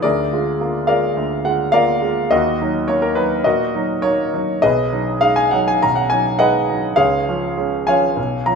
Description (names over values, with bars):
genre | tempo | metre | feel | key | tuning
classical, romantic character piece for solo piano | 104 BPM | 4/4 | uneven beats, rubato | unclear | A4 = 440 Hz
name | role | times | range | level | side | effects
clear concert grand piano | solo | 0.0-8.6 s | B1 to A#5 | -15 LUFS | equal | none
room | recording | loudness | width
moderate recital hall reverb, RT60 1.6 s | minimal, uncompressed stereo recording | -15 LUFS | side -5 dB against mid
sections
0.0-8.6 A section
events
none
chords
0.0 A#7/D; 2.3 D#m; 4.6 G#m7/B; 7.0 C#